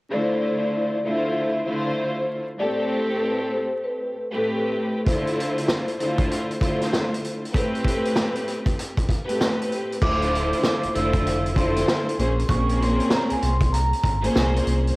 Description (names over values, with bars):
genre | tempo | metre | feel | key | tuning
hip hop, boom-bap hip-hop | 97 BPM | 4/4 | swing 62% on 16ths | D minor | A4 = 440 Hz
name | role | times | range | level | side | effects
vibraphone with soft mallets | melody | 0.1-4.6, 10.0-14.5 s | A4 to E6 | -27 LUFS | equal | high-pass filter, low-pass filter, cassette tape, tape echo
warm studio string section | accompaniment | 0.1-14.9 s | A2 to C5 | -24 LUFS | equal | cassette tape, high-pass filter, low-pass filter
vintage drum kit | drums | 5.1-15.0 s | crash cymbal, hi-hat, kick drum, snare drum | -24 LUFS | equal | cassette tape
sub bass with octave | bass | 10.0-14.9 s | D1 to C2 | -24 LUFS | equal | transformer saturation
room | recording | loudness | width
light reverb, small room ambience | home recording on cassette, vinyl crackle | -20 LUFS | side -22 dB against mid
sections
0.1-10.0 A section; 10.0-15.0 B section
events
none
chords
0.1 Dm9; 2.6 Am9; 5.1 Dm9; 7.5 Am9; 10.0 Dm9; 12.2 Bbm9